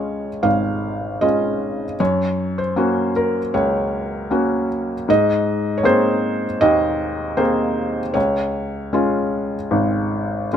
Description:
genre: classical, lyrical solo piano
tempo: 78 BPM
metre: 4/4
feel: rubato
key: Db major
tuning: A4 = 440 Hz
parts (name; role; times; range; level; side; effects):
- felt-muted upright piano; solo; 0.0-10.6 s; Ab1 to F5; -18 LUFS; equal; none
room: light reverb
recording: close, detailed microphones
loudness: -17 LUFS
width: side -9 dB against mid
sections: 0.0-10.6 A section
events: none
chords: 0.0 Db; 2.0 Gb; 5.1 Abadd9; 8.2 Db

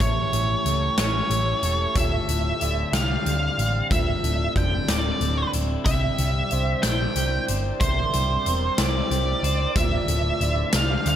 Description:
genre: post-rock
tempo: 62 BPM (dotted quarters)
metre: 6/8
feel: straight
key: D minor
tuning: A4 = 440 Hz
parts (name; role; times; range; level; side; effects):
- octave-fuzz lead guitar; melody; 0.0-11.2 s; C5 to G5; -26 LUFS; right 2 dB; distortion, tape echo
- deep dark ambient pad; sustained chords; 0.0-11.2 s; C3 to E5; -33 LUFS; right 1 dB; chorus, built-in reverb
- electric guitar at the edge of break-up; arpeggios; 0.0-11.2 s; D2 to C5; -32 LUFS; left 4 dB; wide subtle chorus, tape echo
- vibraphone with medium mallets; arpeggios; 0.0-11.2 s; F4 to E5; -33 LUFS; right 4 dB; tape echo
- hollow-body short-scale picked electric bass; bass; 0.0-11.2 s; D1 to D2; -25 LUFS; equal; none
- big rock drum kit; drums; 0.0-11.2 s; hi-hat, kick drum, snare drum; -26 LUFS; left 1 dB; none
room: light reverb, small room ambience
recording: none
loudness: -20 LUFS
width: side -10 dB against mid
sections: 0.0-11.2 A section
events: none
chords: 0.0 A7; 2.0 Dm11; 5.9 C7; 9.8 Dm11

